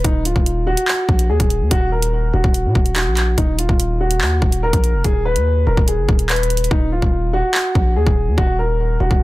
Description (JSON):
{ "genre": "hip hop, drill", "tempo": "144 BPM", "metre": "4/4", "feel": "half-time", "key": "Eb minor", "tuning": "A4 = 440 Hz", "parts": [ { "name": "dark grand piano", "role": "melody", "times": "0.0-9.2 s", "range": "Eb4 to Cb5", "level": "-21 LUFS", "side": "left 1 dB", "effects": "digital delay" }, { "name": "distorted 808-style bass", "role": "bass", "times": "0.0-9.2 s", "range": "D1 to Bb2", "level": "-18 LUFS", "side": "equal", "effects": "distortion" }, { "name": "drill drum kit", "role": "drums", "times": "0.0-9.2 s", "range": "handclaps, hi-hat, kick drum", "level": "-17 LUFS", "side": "equal", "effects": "none" } ], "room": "little or no reverb", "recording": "dense, heavily limited modern master", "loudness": "-14 LUFS", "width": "side -18 dB against mid", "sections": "0.0-9.2 A section", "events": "hi-hats muted 6.7-9.2", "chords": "0.0 Ebm; 5.0 Abm/Eb; 6.7 Ebm" }